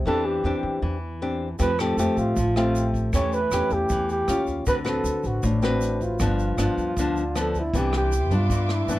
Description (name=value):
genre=bossa nova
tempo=156 BPM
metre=4/4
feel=straight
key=C major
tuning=A4 = 440 Hz
part: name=nylon-string guitar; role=accompaniment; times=0.0-9.0 s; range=G2 to B4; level=-25 LUFS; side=left 2 dB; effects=none
part: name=breathy flugelhorn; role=melody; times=0.1-9.0 s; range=D4 to C#5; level=-26 LUFS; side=right 1 dB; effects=none
part: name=upright bass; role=bass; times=0.1-9.0 s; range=G1 to G2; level=-27 LUFS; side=right 1 dB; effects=none
part: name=jazz brush drum kit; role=drums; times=1.6-9.0 s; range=hi-hat, kick drum, rim click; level=-32 LUFS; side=equal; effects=none
part: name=egg shaker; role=percussion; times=1.6-9.0 s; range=none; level=-42 LUFS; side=right 7 dB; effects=none
part: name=warm studio violin section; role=sustained chords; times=7.7-9.0 s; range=B3 to D6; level=-36 LUFS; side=equal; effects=none
room=light reverb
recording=dark, warm production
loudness=-21 LUFS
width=side -16 dB against mid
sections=0.0-7.7 A section; 7.7-9.0 B section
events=none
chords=0.1 Cadd9/E; 1.6 Fadd9; 3.1 A7/E; 4.3 Eb9; 4.7 D6; 6.2 G7; 7.7 Cmaj9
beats=| 0.06 0.44 0.82 1.21 | 1.59 1.98 2.36 2.74 | 3.13 3.51 3.90 4.28 | 4.66 5.05 5.43 5.81 | 6.20 6.58 6.96 7.35 | 7.73 8.12 8.50 8.88